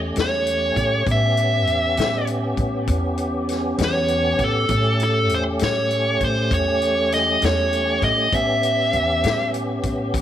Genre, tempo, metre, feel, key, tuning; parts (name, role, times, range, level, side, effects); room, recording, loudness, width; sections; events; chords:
slow blues; 66 BPM (dotted quarters); 12/8; straight; A mixolydian; A4 = 440 Hz
tonewheel organ; sustained chords; 0.0-10.2 s; A3 to G4; -24 LUFS; equal; overdrive, chorus vibrato, slow rotary speaker
upright bass; bass; 0.0-10.2 s; E2 to A2; -25 LUFS; equal
dark smooth lead guitar; melody; 0.2-9.5 s; A4 to E5; -21 LUFS; equal; overdrive
vintage drum kit; drums; 0.2-10.2 s; hi-hat, kick drum, snare drum; -28 LUFS; left 3 dB
moderate echo chamber reverb, RT60 1.6 s; 1960s-style stereo; -18 LUFS; side -11 dB against mid
0.0-10.2 A section
0.0 A9